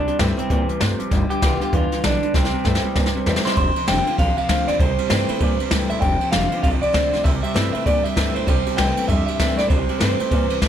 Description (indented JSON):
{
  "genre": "rockabilly",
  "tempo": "196 BPM",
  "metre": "4/4",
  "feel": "swing 62% on 8ths",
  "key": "C mixolydian",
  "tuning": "A4 = 441 Hz",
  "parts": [
    { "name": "electric guitar through a small old amp", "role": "melody", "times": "0.0-10.6 s", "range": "C4 to G5", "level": "-23 LUFS", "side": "right 1 dB", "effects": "tape echo" },
    { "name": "picked steel-string acoustic guitar", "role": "accompaniment", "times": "0.0-10.7 s", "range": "F2 to F4", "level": "-27 LUFS", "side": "left 4 dB", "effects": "none" },
    { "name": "electric guitar through a small old amp", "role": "riff", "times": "0.0-10.7 s", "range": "F2 to A3", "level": "-26 LUFS", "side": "right 3 dB", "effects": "none" },
    { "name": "upright bass", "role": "bass", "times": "0.0-10.7 s", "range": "F1 to Bb2", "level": "-24 LUFS", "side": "equal", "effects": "none" },
    { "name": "jazz brush drum kit", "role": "drums", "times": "0.1-10.7 s", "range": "hi-hat, kick drum, ride cymbal, snare drum", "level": "-21 LUFS", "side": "equal", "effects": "none" }
  ],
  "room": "light reverb",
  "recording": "none",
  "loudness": "-17 LUFS",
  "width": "side -9 dB against mid",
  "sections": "0.0-3.6 A section; 3.6-10.7 B section",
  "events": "drum fill 2.3-3.6",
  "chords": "0.0 C; 1.1 G7; 2.3 C; 3.6 F; 4.8 C; 6.0 F; 7.2 C"
}